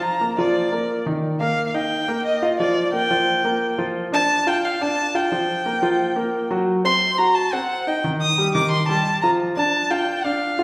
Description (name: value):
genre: jazz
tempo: 176 BPM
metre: 4/4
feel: straight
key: G minor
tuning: A4 = 438 Hz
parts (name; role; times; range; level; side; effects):
- dark violin; melody; 0.0-10.6 s; D5 to Eb6; -23 LUFS; equal; none
- clear concert grand piano; accompaniment; 0.0-10.6 s; Eb3 to F#5; -24 LUFS; equal; none
room: wet recital hall reverb, RT60 1.7 s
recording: recorded in a church or concert hall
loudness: -21 LUFS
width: mono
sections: 0.0-10.6 A section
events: none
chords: 0.0 Gm7 (rootless); 2.6 Gm7; 6.7 F#dim7(no3); 8.0 Ebadd9(#11); 9.4 G7(no3)